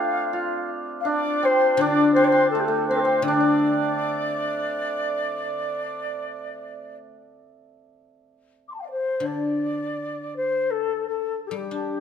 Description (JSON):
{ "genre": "chinese traditional, Chinese chamber ensemble", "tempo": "82 BPM", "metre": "4/4", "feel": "rubato", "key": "D yu mode", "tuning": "A4 = 441 Hz", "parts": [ { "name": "bright reedy xiao", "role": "melody", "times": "0.0-12.0 s", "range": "G4 to D6", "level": "-24 LUFS", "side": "left 2 dB", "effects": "none" }, { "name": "hammered dulcimer", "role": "second line", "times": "0.0-7.1 s", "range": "A3 to G4", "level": "-26 LUFS", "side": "right 4 dB", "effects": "none" }, { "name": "guzheng", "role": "accompaniment", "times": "1.8-12.0 s", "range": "D3 to D4", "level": "-25 LUFS", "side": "left 3 dB", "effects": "none" } ], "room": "moderate scoring stage reverb, RT60 1.5 s", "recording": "none", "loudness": "-21 LUFS", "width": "side -8 dB against mid", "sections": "0.0-7.7 A section; 7.7-12.0 B section", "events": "none", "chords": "none" }